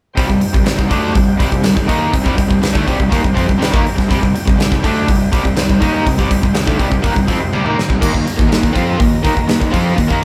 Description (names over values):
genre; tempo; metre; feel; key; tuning
hard rock; 122 BPM; 4/4; straight; C minor; A4 = 440 Hz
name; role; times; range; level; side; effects
tonewheel organ; sustained chords; 0.1-10.2 s; Eb4 to Bb5; -33 LUFS; equal; none
crunchy overdriven guitar; riff; 0.2-10.2 s; C3 to F4; -20 LUFS; equal; none
distorted electric guitar; riff; 0.2-10.2 s; C3 to F4; -22 LUFS; equal; distortion
fuzz picked electric bass; bass; 0.2-10.2 s; C2 to F2; -25 LUFS; equal; none
huge arena drum kit; drums; 0.2-10.2 s; crash cymbal, hi-hat, kick drum, snare drum, toms; -18 LUFS; equal; none
room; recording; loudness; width
light reverb; band playing live in one room; -14 LUFS; mono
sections
0.2-10.2 A section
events
drum fill 7.5-8.0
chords
0.2 Cm; 8.0 Eb5